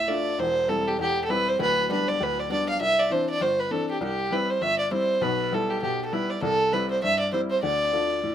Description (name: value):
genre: celtic folk, Celtic reel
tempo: 199 BPM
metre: 4/4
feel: swing 56% on 8ths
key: unclear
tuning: A4 = 440 Hz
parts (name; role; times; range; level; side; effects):
- dark fiddle; melody; 0.0-8.3 s; G4 to F5; -24 LUFS; right 1 dB; none
- bright upright piano; accompaniment; 0.0-8.3 s; D1 to F4; -28 LUFS; left 2 dB; none
room: light reverb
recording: minimal, uncompressed stereo recording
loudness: -22 LUFS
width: side -9 dB against mid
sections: 0.0-8.3 A section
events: none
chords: 0.4 C/E; 1.6 G/D; 2.8 Cadd9; 4.0 C; 5.2 Em/B; 6.4 C; 7.6 Dm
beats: 0.08 | 0.39 0.69 0.99 1.29 | 1.60 1.90 2.20 2.50 | 2.80 3.10 3.41 3.71 | 4.01 4.31 4.61 4.91 | 5.21 5.52 5.82 6.12 | 6.42 6.72 7.02 7.32 | 7.62 7.93 8.23